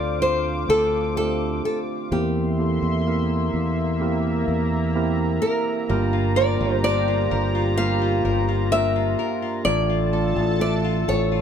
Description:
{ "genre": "pop ballad", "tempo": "64 BPM", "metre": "4/4", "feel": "straight", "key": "D minor", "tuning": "A4 = 439 Hz", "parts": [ { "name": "nylon-string guitar", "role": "melody", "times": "0.0-11.4 s", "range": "G4 to F5", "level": "-24 LUFS", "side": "left 1 dB", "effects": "none" }, { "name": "mellow tine electric piano", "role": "accompaniment", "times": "0.0-11.4 s", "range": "G2 to E5", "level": "-26 LUFS", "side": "right 4 dB", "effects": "none" }, { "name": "warm analog pad", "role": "sustained chords", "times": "0.0-11.4 s", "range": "Bb3 to D6", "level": "-28 LUFS", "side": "left 2 dB", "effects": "chorus" }, { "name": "fingered electric bass", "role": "bass", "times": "0.0-11.4 s", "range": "G1 to E2", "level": "-24 LUFS", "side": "left 1 dB", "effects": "none" }, { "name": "nylon-string guitar", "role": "arpeggios", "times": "5.9-11.4 s", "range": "A2 to Bb4", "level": "-31 LUFS", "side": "left 7 dB", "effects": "tape echo" } ], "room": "light reverb", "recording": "band playing live in one room", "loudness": "-20 LUFS", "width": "side -8 dB against mid", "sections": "0.0-11.4 A section", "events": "none", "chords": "0.0 Dm7; 2.1 C7/E; 5.9 Gm7; 9.7 Dm/A" }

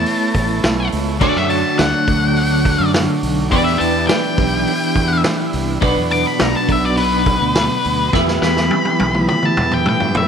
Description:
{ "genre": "psychedelic rock", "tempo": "104 BPM", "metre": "4/4", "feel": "straight", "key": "E dorian", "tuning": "A4 = 442 Hz", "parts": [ { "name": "octave-fuzz lead guitar", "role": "melody", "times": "0.0-10.3 s", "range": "B4 to D6", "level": "-20 LUFS", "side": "left 3 dB", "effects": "distortion, tape echo" }, { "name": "overdriven combo organ", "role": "sustained chords", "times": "0.0-10.3 s", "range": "B3 to C#5", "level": "-26 LUFS", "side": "right 9 dB", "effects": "none" }, { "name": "twelve-string electric guitar", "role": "riff", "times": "0.0-10.3 s", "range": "B2 to C#5", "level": "-19 LUFS", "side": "equal", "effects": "tremolo, double-tracked left and right" }, { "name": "fuzz fingered electric bass", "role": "bass", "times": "0.0-10.3 s", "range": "A1 to A2", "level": "-22 LUFS", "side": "equal", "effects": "overdrive" }, { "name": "vintage drum kit", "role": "drums", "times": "0.1-10.3 s", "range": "crash cymbal, hi-hat, kick drum, snare drum, toms", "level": "-20 LUFS", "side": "equal", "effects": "none" } ], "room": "light reverb, small room ambience", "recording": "none", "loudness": "-14 LUFS", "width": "side -7 dB against mid", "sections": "0.0-10.3 A section", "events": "lead electric guitar solo 0.0-10.3; drum fill 8.1-10.3", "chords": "0.0 Aadd9; 1.2 Dmaj7; 3.5 Em7; 5.8 Bm; 8.1 Em" }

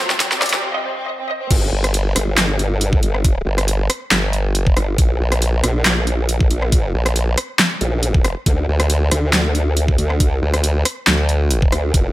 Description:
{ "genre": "heavy wobble dubstep", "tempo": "138 BPM", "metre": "4/4", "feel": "swing 54% on 16ths, half-time", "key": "unclear", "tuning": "A4 = 444 Hz", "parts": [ { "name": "rich studio violin section", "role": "melody", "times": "0.0-1.5 s", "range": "C4 to Eb5", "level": "-24 LUFS", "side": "equal", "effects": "tape echo" }, { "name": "supersaw pad", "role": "sustained chords", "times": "0.0-0.6 s", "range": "F2 to F4", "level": "-33 LUFS", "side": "equal", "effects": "none" }, { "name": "riser", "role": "sound effects", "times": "0.0-0.6 s", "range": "none", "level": "-27 LUFS", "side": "equal", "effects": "none" }, { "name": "big-room dance drum kit", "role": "drums", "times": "0.1-12.0 s", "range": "crash cymbal, handclaps, hi-hat, rim click, snare drum", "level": "-18 LUFS", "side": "equal", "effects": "overdrive, high-pass filter on snare, high-pass filter on hats, high-pass filter on cymbals" }, { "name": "electronic kick drum", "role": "drums", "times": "0.2-12.0 s", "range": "none", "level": "-16 LUFS", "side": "equal", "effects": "none" }, { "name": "formant-sweep wobble bass", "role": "bass", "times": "1.5-12.1 s", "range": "F1 to D2", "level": "-18 LUFS", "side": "equal", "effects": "chorus, overdrive" }, { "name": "formant-sweep wobble bass", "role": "bass", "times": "1.7-11.7 s", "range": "F1 to D2", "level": "-17 LUFS", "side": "equal", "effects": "chorus, overdrive" } ], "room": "digital ambience", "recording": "high-pass filter", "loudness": "-15 LUFS", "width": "side -16 dB against mid", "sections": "0.0-1.5 A section; 1.5-12.1 B section", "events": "build-up 0.0-1.5; drum fill 0.0-0.6; riser 0.0-0.6; filter sweep 0.0-1.5; break 0.6-1.5; drop 1.5-12.1", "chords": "0.0 F; 1.5 N.C.; 5.0 Bb5; 8.5 N.C." }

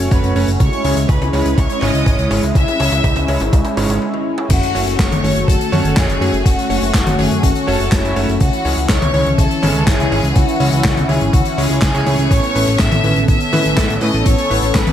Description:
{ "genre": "italo disco", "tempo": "123 BPM", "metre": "4/4", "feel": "straight", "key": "unclear", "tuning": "A4 = 438 Hz", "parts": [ { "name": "warm analog pad", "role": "sustained chords", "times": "0.0-14.9 s", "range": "E3 to A4", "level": "-20 LUFS", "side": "left 2 dB", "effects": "chorus" }, { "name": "bright electric grand piano", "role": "stabs", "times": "0.0-14.6 s", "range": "A2 to C#5", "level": "-24 LUFS", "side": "right 3 dB", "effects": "low-pass filter" }, { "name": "fat analog bass", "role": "bass", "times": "0.0-14.9 s", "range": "F#1 to A2", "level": "-19 LUFS", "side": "equal", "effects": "none" }, { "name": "raw garage drum kit", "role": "drums", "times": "0.0-14.9 s", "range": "crash cymbal, handclaps, hi-hat, snare drum, toms", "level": "-21 LUFS", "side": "left 1 dB", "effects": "high-pass filter on hats, high-pass filter on toms, high-pass filter on cymbals, high-pass filter on snare, high-pass filter on room" }, { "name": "clear studio violin section", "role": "melody", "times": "0.1-14.9 s", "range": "E4 to E6", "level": "-21 LUFS", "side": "left 1 dB", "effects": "tape echo" }, { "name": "electronic kick drum", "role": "drums", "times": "0.1-14.8 s", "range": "none", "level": "-15 LUFS", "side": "equal", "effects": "none" } ], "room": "light reverb, small room ambience", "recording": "none", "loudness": "-13 LUFS", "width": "side -10 dB against mid", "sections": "0.0-4.5 A section; 4.5-14.9 B section", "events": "drum fill 0.0-4.0, 4.0-4.5; break 4.0-4.5", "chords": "0.0 F#m; 0.6 C#m; 4.5 F#m; 8.4 C#m; 12.3 Aadd9" }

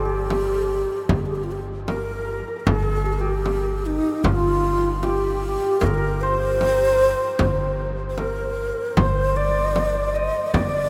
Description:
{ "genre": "Persian modal ensemble", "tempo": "76 BPM", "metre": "4/4", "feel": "straight", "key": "G dastgah shur", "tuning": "A4 = 440 Hz", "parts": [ { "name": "breathy mellow low ney", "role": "melody", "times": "0.0-10.9 s", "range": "Eb4 to Eb5", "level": "-25 LUFS", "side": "equal", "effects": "none" }, { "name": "santur", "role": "second line", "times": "0.0-10.9 s", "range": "F4 to Eb5", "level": "-31 LUFS", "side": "equal", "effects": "none" }, { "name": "upright bass", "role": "bass", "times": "0.0-10.9 s", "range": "G1", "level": "-28 LUFS", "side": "equal", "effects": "none" }, { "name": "frame drum", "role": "percussion", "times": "0.3-10.7 s", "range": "none", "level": "-29 LUFS", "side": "equal", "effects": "none" } ], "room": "wet huge ambient reverb, RT60 7.8 s", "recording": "in a vast, echoing space", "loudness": "-22 LUFS", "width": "mono", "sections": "0.0-10.9 A section", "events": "none", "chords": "none" }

